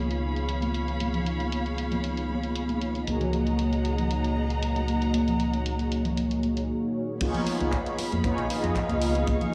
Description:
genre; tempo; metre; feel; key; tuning
nu-disco, nu disco; 116 BPM; 4/4; straight; Db mixolydian; A4 = 438 Hz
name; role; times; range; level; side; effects
mellow synth brass; accompaniment; 0.0-9.5 s; Bb3 to Eb5; -31 LUFS; equal; chorus, sidechain pumping, digital delay
dark chamber string section; sustained chords; 0.0-9.5 s; Ab4 to Db6; -38 LUFS; equal; sidechain pumping, low-pass filter
fingered electric bass with an envelope filter; bass; 0.0-9.4 s; Cb2 to F2; -32 LUFS; equal; none
house drum kit; drums; 0.1-9.5 s; crash cymbal, handclaps, hi-hat; -41 LUFS; equal; low-pass filter on hats, low-pass filter on cymbals, low-pass filter on snare
congas; percussion; 0.2-9.5 s; none; -35 LUFS; equal; none
kick drum; drums; 7.2-9.4 s; none; -32 LUFS; equal; none
room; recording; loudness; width
light reverb, small room ambience; small room reverb; -27 LUFS; mono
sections
0.0-7.2 A section; 7.2-9.5 B section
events
break 6.7-7.2; drop 7.2-9.5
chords
0.0 Db7; 3.1 Gb69/Db; 7.2 Db7

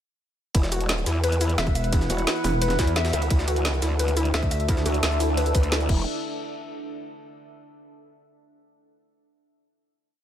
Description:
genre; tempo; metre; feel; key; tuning
dark technical drum and bass; 174 BPM; 4/4; straight; unclear; A4 = 440 Hz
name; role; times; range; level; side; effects
deep dark ambient pad; sustained chords; 1.3-6.1 s; D4 to F#5; -31 LUFS; right 2 dB; chorus, built-in reverb, sidechain pumping
warbly dusty pluck; arpeggios; 0.5-6.1 s; E4 to E5; -29 LUFS; left 4 dB; chorus, vintage 12-bit sampler grit, sidechain pumping, tape echo
growl bass; bass; 0.5-6.1 s; E1 to E2; -24 LUFS; equal; chorus, tube saturation
drum and bass drum kit; drums; 0.5-6.0 s; crash cymbal, hi-hat, shaker, snare drum; -29 LUFS; equal; overdrive
electronic kick drum; drums; 0.5-6.0 s; none; -22 LUFS; equal; none
jungle sampler-style drum kit; drums; 0.5-5.9 s; ride cymbal, snare drum; -35 LUFS; right 1 dB; none
metallic wobble bass; bass; 1.6-4.8 s; E1 to E2; -25 LUFS; equal; chorus, tube saturation
room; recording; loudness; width
little or no reverb; none; -21 LUFS; side -10 dB against mid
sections
0.5-6.1 drop; 6.1-7.4 final hit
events
drop 0.5-6.1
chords
0.5 E5; 3.3 D5; 5.9 E5; 6.1 N.C.

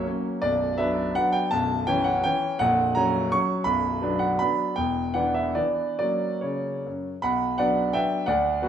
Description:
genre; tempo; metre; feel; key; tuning
classical, romantic triple-time dance for piano with dotted rhythms; 132-181 BPM; 3/4; rubato; B minor; A4 = 440 Hz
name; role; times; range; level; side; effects
clear grand piano; solo; 0.0-8.7 s; A#0 to C#6; -22 LUFS; equal; none
room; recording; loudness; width
wet recital hall reverb, RT60 1.4 s; none; -22 LUFS; side -9 dB against mid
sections
0.0-7.2 A section; 7.2-8.7 B section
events
none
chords
0.4 Bm; 1.5 C#m7b5/B; 2.6 F#/A#; 3.7 Bm; 4.8 Em7; 6.0 F#; 7.2 Bm

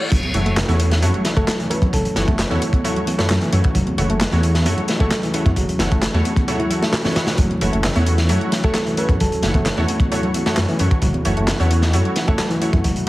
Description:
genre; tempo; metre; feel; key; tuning
breakbeat, breaks; 132 BPM; 4/4; straight; F# minor; A4 = 440 Hz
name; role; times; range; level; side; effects
reed electric piano; riff; 0.0-13.1 s; E3 to C#4; -25 LUFS; equal; ping-pong delay
orchestra-hit-like synth stab; stabs; 0.0-13.1 s; A3 to C#5; -26 LUFS; right 1 dB; built-in reverb, cassette tape, ping-pong delay
reverse cymbal and impact; sound effects; 0.0-1.9 s; none; -29 LUFS; left 1 dB; none
dark analog pad; sustained chords; 0.1-13.1 s; A3 to F#5; -30 LUFS; left 1 dB; chorus, sidechain pumping
dark detuned saw bass; bass; 0.1-12.9 s; F#1 to F#2; -20 LUFS; equal; none
crunchy breakbeat drum kit; drums; 0.1-13.1 s; crash cymbal, hi-hat, kick drum, snare drum; -20 LUFS; equal; none
garage drum kit; drums; 0.1-13.1 s; handclaps, hi-hat; -30 LUFS; equal; none
congas; percussion; 0.1-12.9 s; none; -28 LUFS; right 1 dB; none
bell-like FM electric piano; melody; 1.4-12.8 s; E4 to B4; -28 LUFS; equal; chorus, tremolo, telephone sound, cassette tape, ping-pong delay
room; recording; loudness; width
light reverb, studio reverb; heavily compressed radio sound, multiband compression, vinyl crackle; -16 LUFS; side -18 dB against mid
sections
0.1-13.1 A section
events
drop 0.1-13.1; impact 0.1-1.9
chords
0.1 F#m7

